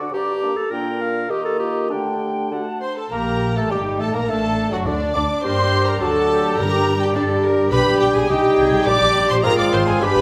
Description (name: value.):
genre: quick classical-period movement for symphony orchestra.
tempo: 104 BPM.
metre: 2/4.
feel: straight.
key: G minor.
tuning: A4 = 440 Hz.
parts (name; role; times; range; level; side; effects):
mellow cor anglais; second line; 0.0-10.2 s; D4 to G5; -30 LUFS; equal; none.
small flute group; second line; 0.0-10.2 s; D5 to D6; -31 LUFS; equal; none.
mellow bassoon; accompaniment; 0.0-10.2 s; G2 to D4; -28 LUFS; equal; none.
clear clarinet; second line; 0.1-10.2 s; D4 to D5; -27 LUFS; equal; none.
mellow French horn section; sustained chords; 0.4-10.2 s; D3 to G4; -28 LUFS; equal; none.
warm studio violin section; melody; 2.8-10.2 s; D5 to D6; -28 LUFS; equal; none.
dark studio violin section; second line; 2.8-10.2 s; D4 to D5; -30 LUFS; equal; none.
warm studio viola section; accompaniment; 2.8-10.2 s; D4 to D5; -28 LUFS; equal; none.
dark symphonic double bass section; bass; 3.1-10.2 s; F#1 to G2; -27 LUFS; equal; none.
warm studio cello section; bass; 3.1-10.2 s; D4 to Bb4; -28 LUFS; equal; none.
timpani; percussion; 6.6-7.4 s; G2; -30 LUFS; equal; none.
room: wet recital hall reverb, RT60 1.3 s.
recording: none.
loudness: -19 LUFS.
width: mono.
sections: 0.0-3.1 A section; 3.1-10.2 B section.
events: none.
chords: 0.1 Gm; 0.7 Bb; 1.3 Eb; 1.9 Dsus4; 2.5 D; 3.1 Gm/Bb; 3.7 Gmadd9; 4.3 D; 5.4 Gm; 6.0 D; 6.6 Gm; 7.7 G/B; 8.3 Cm; 8.9 Gm/Bb; 9.4 Fm/Ab.